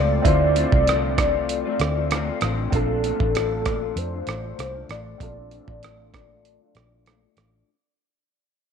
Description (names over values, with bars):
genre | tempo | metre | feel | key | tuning
indie pop, bedroom pop | 97 BPM | 4/4 | swing 55% on 16ths | unclear | A4 = 439 Hz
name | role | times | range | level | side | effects
warbly nostalgic lead | melody | 0.0-7.0 s | A4 to D5 | -25 LUFS | left 1 dB | tremolo, analog chorus, low-pass filter, tape echo
bright upright piano | accompaniment | 0.0-7.7 s | C4 to C5 | -31 LUFS | right 14 dB | cassette tape, low-pass filter
electric guitar through a small old amp | accompaniment | 0.0-7.7 s | Bb2 to F4 | -29 LUFS | left 15 dB | analog chorus, vibrato effect, low-pass filter
vintage muted fingered electric bass | bass | 0.0-7.6 s | A1 to F2 | -26 LUFS | equal | none
dusty soul sampler-style drum kit | drums | 0.2-7.5 s | hi-hat, kick drum, rim click | -24 LUFS | right 2 dB | none
room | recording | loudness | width
digital ambience | 1960s-style stereo with parts hard left and right | -20 LUFS | side -7 dB against mid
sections
0.0-7.7 A section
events
fade-out 0.0-7.7; filter sweep 0.0-7.7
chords
0.0 Dm7; 2.7 Bbmaj7